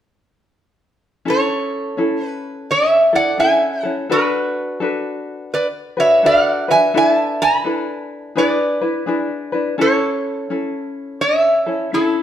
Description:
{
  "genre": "Hawaiian",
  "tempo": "84 BPM",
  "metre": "4/4",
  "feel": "swing 64% on 8ths",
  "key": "A major",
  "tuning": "A4 = 440 Hz",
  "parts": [
    { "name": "metal-body resonator slide guitar", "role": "melody", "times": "1.3-12.2 s", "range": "E4 to B5", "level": "-16 LUFS", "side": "right 1 dB", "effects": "none" },
    { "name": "tenor ukulele", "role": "accompaniment", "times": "1.3-12.2 s", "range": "C#4 to B4", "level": "-21 LUFS", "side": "left 2 dB", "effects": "none" }
  ],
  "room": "moderate stone room reverb, RT60 1.1 s",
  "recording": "band playing live in one room",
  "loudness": "-15 LUFS",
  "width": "side -10 dB against mid",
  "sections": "1.3-12.2 A section",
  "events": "none",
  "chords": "1.3 Amaj7; 4.1 D6; 6.9 E7sus4; 8.4 E7; 9.8 A"
}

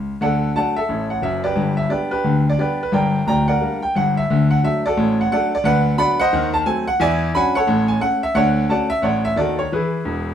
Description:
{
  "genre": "jazz, stride piano",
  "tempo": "177 BPM",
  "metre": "4/4",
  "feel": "swing 61% on 8ths",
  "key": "D major",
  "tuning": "A4 = 439 Hz",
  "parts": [
    { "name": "clear grand piano", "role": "solo", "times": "0.0-10.3 s", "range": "D1 to B5", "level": "-16 LUFS", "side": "equal", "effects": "none" }
  ],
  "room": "wet studio reverb, RT60 0.6 s",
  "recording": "band playing live in one room",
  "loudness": "-16 LUFS",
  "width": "side -9 dB against mid",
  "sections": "0.2-10.3 A section",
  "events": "grand piano fill 0.0, 10.0",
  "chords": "0.2 D; 1.6 G; 2.9 Gm; 4.3 D; 5.6 Bm/D; 6.3 D#dim7; 7.0 E13; 7.7 A; 8.4 Dmaj7; 9.7 E"
}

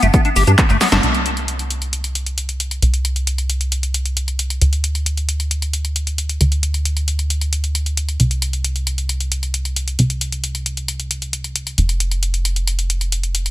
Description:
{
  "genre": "uplifting trance",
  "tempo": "134 BPM",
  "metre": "4/4",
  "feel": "straight",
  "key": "unclear",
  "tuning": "A4 = 440 Hz",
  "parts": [
    { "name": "liquid acid bass", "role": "arpeggios", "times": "0.0-1.0 s", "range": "A3 to G4", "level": "-19 LUFS", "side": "left 4 dB", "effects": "phaser, analog chorus, sidechain pumping, digital delay" },
    { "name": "plucky analog bass", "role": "bass", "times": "0.0-13.5 s", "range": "F1 to G2", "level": "-19 LUFS", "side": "equal", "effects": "sidechain pumping" },
    { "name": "punchy analog drum machine", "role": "drums", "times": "0.0-13.5 s", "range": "handclaps, hi-hat, shaker, snare drum", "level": "-21 LUFS", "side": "equal", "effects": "overdrive" },
    { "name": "electronic kick drum", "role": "drums", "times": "0.1-0.7 s", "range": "none", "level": "-14 LUFS", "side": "equal", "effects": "overdrive" }
  ],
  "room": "light reverb, digital ambience",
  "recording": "none",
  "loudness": "-17 LUFS",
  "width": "side -16 dB against mid",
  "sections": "0.0-1.0 A section; 1.0-13.5 B section",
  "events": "drum fill 0.8; band accent 0.9",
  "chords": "0.0 G; 1.0 N.C."
}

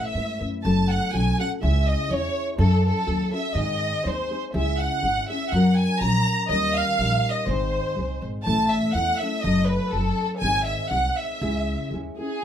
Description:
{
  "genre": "mexican folk, mariachi",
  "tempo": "122 BPM",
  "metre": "2/4",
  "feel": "straight",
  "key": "C# minor",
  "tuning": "A4 = 440 Hz",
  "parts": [
    { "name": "rich studio violin section", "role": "melody", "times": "0.0-12.4 s", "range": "G#4 to A#5", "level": "-25 LUFS", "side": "equal", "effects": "none" },
    { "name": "nylon-string guitar", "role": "accompaniment", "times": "0.0-12.4 s", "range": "G#2 to B4", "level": "-25 LUFS", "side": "left 2 dB", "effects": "none" },
    { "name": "upright bass", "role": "bass", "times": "0.1-12.1 s", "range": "F#1 to G#2", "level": "-26 LUFS", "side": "right 1 dB", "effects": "none" }
  ],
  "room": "moderate studio reverb, RT60 0.6 s",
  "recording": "band playing live in one room",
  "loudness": "-21 LUFS",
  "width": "side -9 dB against mid",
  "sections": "0.0-12.4 A section",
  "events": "none",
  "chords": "0.0 Aadd9; 0.6 F#m; 1.6 C#m; 2.6 F#m; 3.6 G#; 4.5 C#m; 5.5 F#; 6.5 D#7; 7.5 G#; 8.5 A; 9.4 F#m; 10.4 G#; 11.4 C#m"
}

